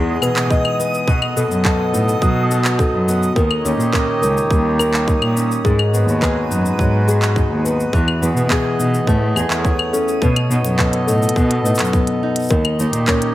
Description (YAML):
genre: folktronica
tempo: 105 BPM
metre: 4/4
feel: straight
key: B mixolydian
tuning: A4 = 440 Hz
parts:
  - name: celesta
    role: second line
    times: 0.0-13.3 s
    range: G#4 to D#5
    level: -23 LUFS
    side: left 3 dB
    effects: digital delay
  - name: pedal harmonium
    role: sustained chords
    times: 0.0-13.3 s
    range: B2 to D#5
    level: -24 LUFS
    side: right 1 dB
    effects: vintage 12-bit sampler grit
  - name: nylon-string guitar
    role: arpeggios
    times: 0.0-13.3 s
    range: G#2 to A#4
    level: -22 LUFS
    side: equal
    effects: digital delay
  - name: warm cello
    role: bass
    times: 0.0-13.1 s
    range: C#2 to B2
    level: -19 LUFS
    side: equal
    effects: tube saturation
  - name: backwards swelling texture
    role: texture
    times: 0.0-10.2 s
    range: D#6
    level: -29 LUFS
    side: right 3 dB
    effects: built-in reverb
  - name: organic electronic drum kit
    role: drums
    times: 0.2-13.3 s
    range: cabasa, claves, handclaps, hi-hat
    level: -24 LUFS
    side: left 1 dB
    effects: none
  - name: electronic kick drum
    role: drums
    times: 0.5-13.2 s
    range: none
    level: -19 LUFS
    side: equal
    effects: none
room: light reverb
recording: none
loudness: -14 LUFS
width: side -15 dB against mid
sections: 0.0-10.2 A section; 10.2-13.3 B section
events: none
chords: 0.0 Emaj7; 1.1 B7; 3.4 D#7; 5.7 G#m7; 7.9 Emaj7; 9.1 Amaj7; 10.2 B7; 12.5 D#7